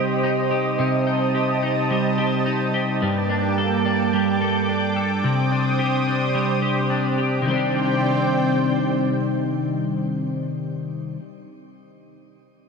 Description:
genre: dream pop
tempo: 108 BPM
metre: 4/4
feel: straight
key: C dorian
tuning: A4 = 441 Hz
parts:
  - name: lush unison pad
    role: sustained chords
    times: 0.0-10.4 s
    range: C3 to Eb6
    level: -24 LUFS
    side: right 3 dB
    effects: chorus, shimmer reverb
  - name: twelve-string electric guitar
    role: arpeggios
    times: 0.0-11.2 s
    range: G2 to A4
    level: -21 LUFS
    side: left 1 dB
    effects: lush chorus, ping-pong delay
room: wet huge ambient reverb, RT60 4.6 s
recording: none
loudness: -19 LUFS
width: side -5 dB against mid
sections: 0.0-7.5 A section; 7.5-9.7 B section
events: none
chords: 0.0 Cm; 3.0 Gmadd9; 5.2 Cmadd9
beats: 0.23 | 0.79 1.35 1.90 2.46 | 3.01 3.57 4.12 4.68 | 5.24 5.79 6.35 6.90 | 7.46 8.01 8.57 9.12

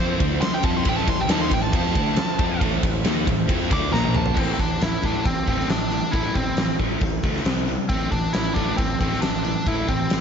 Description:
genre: hard rock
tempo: 136 BPM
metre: 4/4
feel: straight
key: unclear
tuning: A4 = 438 Hz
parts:
  - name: nasal lead guitar with a parked wah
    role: melody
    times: 0.0-10.2 s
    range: C4 to D6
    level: -27 LUFS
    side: equal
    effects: overdrive, slapback echo, analog delay
  - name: warm analog pad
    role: sustained chords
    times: 0.0-4.4 s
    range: A3 to C5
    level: -37 LUFS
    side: right 1 dB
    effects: none
  - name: sludgy distorted guitar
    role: riff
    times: 0.0-10.2 s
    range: A2 to F4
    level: -27 LUFS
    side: left 1 dB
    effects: overdrive, slapback echo
  - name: sludgy distorted guitar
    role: riff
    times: 0.0-4.4 s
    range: A2 to F4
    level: -28 LUFS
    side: right 1 dB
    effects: overdrive, slapback echo
  - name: fuzz picked electric bass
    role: bass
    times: 0.0-10.2 s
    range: A1 to F2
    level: -28 LUFS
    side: equal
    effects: overdrive
  - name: huge arena drum kit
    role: drums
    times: 0.2-10.2 s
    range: crash cymbal, hi-hat, kick drum, ride cymbal, snare drum, toms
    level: -23 LUFS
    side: equal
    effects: none
room: light reverb, small room ambience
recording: nothing above 7.6 kHz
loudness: -20 LUFS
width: side -7 dB against mid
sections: 0.0-4.4 A section; 4.4-10.2 B section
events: lead electric guitar solo 0.0-4.4; drum fill 3.9-4.4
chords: 0.0 Am; 3.9 Bb5; 4.4 Am; 7.5 C5; 7.9 Am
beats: 0.42 | 0.86 1.30 1.74 2.18 | 2.62 3.06 3.50 3.93 | 4.37 4.81 5.25 5.70 | 6.14 6.58 7.02 7.46 | 7.90 8.34 8.78 9.22 | 9.66 10.11

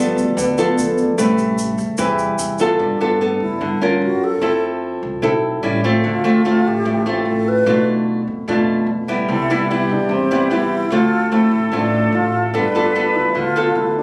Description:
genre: bossa nova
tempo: 148 BPM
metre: 4/4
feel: straight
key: unclear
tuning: A4 = 445 Hz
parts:
  - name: mellow tine electric piano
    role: accompaniment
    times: 0.0-2.8 s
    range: C3 to B4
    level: -24 LUFS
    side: equal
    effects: none
  - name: nylon-string guitar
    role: accompaniment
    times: 0.0-14.0 s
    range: A2 to B4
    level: -19 LUFS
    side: equal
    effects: none
  - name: upright bass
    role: bass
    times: 0.0-14.0 s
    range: G1 to G2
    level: -29 LUFS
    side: equal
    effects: none
  - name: tube shaker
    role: percussion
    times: 0.2-2.8 s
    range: none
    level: -32 LUFS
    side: equal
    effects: none
  - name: bright wooden-headed alto flute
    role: melody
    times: 2.8-14.0 s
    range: C4 to B4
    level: -23 LUFS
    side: equal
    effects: none
  - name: hollow small flute group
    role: second line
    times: 9.3-13.9 s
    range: G4 to B4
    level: -26 LUFS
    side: equal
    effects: none
room: little or no reverb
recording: recorded on a phone in the room, club reverb, compression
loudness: -18 LUFS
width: mono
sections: 0.0-2.8 A section; 2.8-14.0 B section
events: tine electric piano solo 0.0-2.8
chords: 0.0 G9; 1.2 Am9; 2.8 G9; 4.0 F#maj7; 4.4 Fmaj7; 5.6 A7; 6.0 Dm7; 7.7 Bm7b5; 9.3 Am9/C; 10.9 Dm7; 12.5 G9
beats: 0.37 0.77 | 1.18 1.58 1.99 2.39 | 2.80 3.20 3.61 4.01 | 4.42 4.82 5.23 5.63 | 6.04 6.44 6.85 7.26 | 7.66 8.07 8.47 8.88 | 9.29 9.69 10.10 10.50 | 10.91 11.32 11.72 12.13 | 12.54 12.94 13.35 13.76

